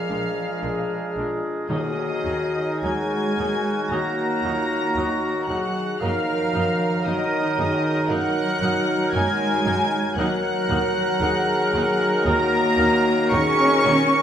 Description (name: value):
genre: classical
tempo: 57 BPM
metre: 4/4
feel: rubato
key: Eb minor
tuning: A4 = 440 Hz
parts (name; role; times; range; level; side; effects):
- warm studio violin section; melody; 0.0-14.2 s; Eb6 to Db7; -30 LUFS; left 4 dB; none
- clear oboe; second line; 0.0-14.2 s; Bb4; -33 LUFS; right 1 dB; none
- flute section; second line; 0.0-14.2 s; Eb5 to Db6; -29 LUFS; left 1 dB; none
- rich studio violin section; second line; 0.0-14.2 s; Eb5 to Db6; -32 LUFS; equal; none
- warm clarinet; second line; 0.0-14.2 s; D4 to Eb4; -32 LUFS; equal; none
- mellow bassoon; accompaniment; 0.0-14.2 s; Gb3 to Ab3; -30 LUFS; equal; none
- mellow French horn section; sustained chords; 0.0-14.2 s; F4 to Bb4; -28 LUFS; left 3 dB; none
- warm trombone section; sustained chords; 0.0-14.2 s; Eb3 to Eb4; -33 LUFS; right 2 dB; none
- warm trumpet section; stabs; 0.0-14.2 s; Gb4 to Bb4; -28 LUFS; right 2 dB; none
- dark chamber cello section; bass; 0.0-14.2 s; Eb3 to Db4; -28 LUFS; right 1 dB; none
- warm studio viola section; accompaniment; 0.1-13.9 s; Gb3 to Eb4; -34 LUFS; equal; none
- rich studio double bass section; bass; 0.1-13.9 s; Bb1 to Gb2; -31 LUFS; right 2 dB; none
- timpani; percussion; 1.7-3.3 s; Eb3; -32 LUFS; left 1 dB; none
room: wet scoring stage reverb, RT60 1.5 s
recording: none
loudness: -19 LUFS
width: side -9 dB against mid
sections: 0.0-14.2 A section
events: none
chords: 0.0 Bb7; 1.7 Ebm; 6.0 Ebm/Gb; 10.2 Ebm